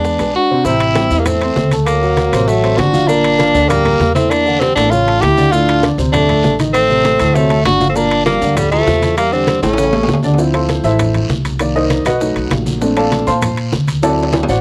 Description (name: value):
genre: Afro-Cuban jazz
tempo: 197 BPM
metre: 4/4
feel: straight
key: unclear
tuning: A4 = 439 Hz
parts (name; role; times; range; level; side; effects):
- edgy tenor saxophone; melody; 0.0-10.2 s; G3 to G4; -17 LUFS; equal; cassette tape
- breathy trombone; second line; 0.0-10.2 s; D3 to E4; -23 LUFS; equal; cassette tape
- warm baby grand piano; accompaniment; 0.0-14.6 s; A2 to C6; -20 LUFS; equal; cassette tape
- upright bass; bass; 0.0-14.6 s; G1 to Bb2; -20 LUFS; equal; none
- bongos; percussion; 0.0-14.6 s; none; -26 LUFS; equal; none
- congas; percussion; 0.0-14.6 s; none; -24 LUFS; equal; none
- guiro; percussion; 0.0-14.6 s; none; -34 LUFS; equal; none
- maracas; percussion; 0.0-14.6 s; none; -38 LUFS; equal; none
- timbales; percussion; 0.2-14.5 s; none; -25 LUFS; equal; none
room: moderate booth ambience, RT60 0.2 s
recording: home recording on cassette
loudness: -14 LUFS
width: mono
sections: 0.7-10.4 A section; 10.4-14.6 B section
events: drum fill 9.6-10.4, 14.0-14.6; grand piano solo 10.4-14.6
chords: 0.0 E7b13; 0.7 Am7; 1.9 D7b13; 3.1 Gm7; 4.3 C13; 4.9 A7b13; 5.5 Adim; 7.4 D7; 8.0 Gm9; 9.2 C13; 9.8 A; 10.4 Dm9; 11.6 Cm7; 12.2 B7; 12.8 Bbmaj9; 14.0 D7